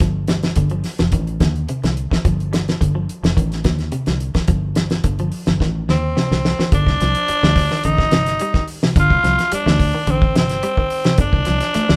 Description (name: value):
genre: afrobeat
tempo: 107 BPM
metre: 4/4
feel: straight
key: unclear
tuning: A4 = 441 Hz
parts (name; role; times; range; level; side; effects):
- clean electric guitar; arpeggios; 0.0-12.0 s; C3 to A3; -27 LUFS; equal; spring reverb
- fingered electric bass; bass; 0.0-12.0 s; F1 to Eb2; -23 LUFS; equal; none
- damped 70s drum kit; drums; 0.0-12.0 s; hi-hat, kick drum, snare drum; -21 LUFS; equal; none
- raspy tenor saxophone; melody; 5.9-12.0 s; C4 to F4; -21 LUFS; equal; none
room: moderate studio reverb, RT60 0.6 s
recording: band playing live in one room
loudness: -18 LUFS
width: mono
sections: 0.0-6.7 A section; 6.7-12.0 B section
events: drum fill 5.6-6.7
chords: 0.0 G5; 1.1 Adim; 2.3 G5; 3.4 Adim; 4.5 G5; 5.6 Adim; 6.7 G5; 7.8 Am7b5; 9.0 Gsus2; 10.1 Am7b5; 11.2 Gsus2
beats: | 0.02 0.58 1.14 1.70 | 2.25 2.81 3.37 3.93 | 4.49 5.05 5.61 6.17 | 6.73 7.29 7.84 8.40 | 8.96 9.52 10.08 10.64 | 11.19 11.75